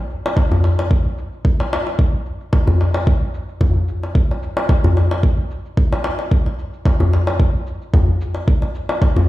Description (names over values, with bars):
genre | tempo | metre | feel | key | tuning
downtempo | 111 BPM | 4/4 | swing 54% on 16ths | none | none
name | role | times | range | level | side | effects
shaker | drums | 0.1-9.3 s | none | -54 LUFS | right 1 dB | none
darbuka | percussion | 0.3-9.3 s | none | -18 LUFS | left 1 dB | none
electronic kick drum | drums | 0.4-9.1 s | none | -15 LUFS | equal | none
room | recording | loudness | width
moderate echo chamber reverb, RT60 1.4 s, digital ambience | played on a big sound system in a bare room, large studio reverb | -15 LUFS | side -16 dB against mid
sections
0.0-9.3 A section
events
none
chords
none